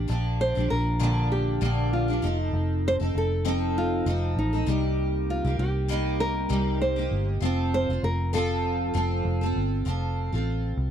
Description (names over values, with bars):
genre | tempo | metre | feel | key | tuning
acoustic pop | 98 BPM | 4/4 | swing 55% on 16ths | unclear | A4 = 441 Hz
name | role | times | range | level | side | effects
picked steel-string acoustic guitar | accompaniment | 0.0-10.9 s | Bb2 to A4 | -28 LUFS | equal | double-tracked left and right
vintage muted fingered electric bass | bass | 0.0-10.9 s | F1 to C2 | -27 LUFS | equal | none
nylon-string guitar | melody | 0.4-9.2 s | Eb4 to C5 | -29 LUFS | equal | none
room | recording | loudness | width
little or no reverb | dry, close 1970s-style studio recording | -23 LUFS | side -9 dB against mid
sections
0.0-9.9 A section; 9.9-10.9 B section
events
none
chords
0.1 Bb6; 2.2 F7; 4.7 Cm7; 7.4 F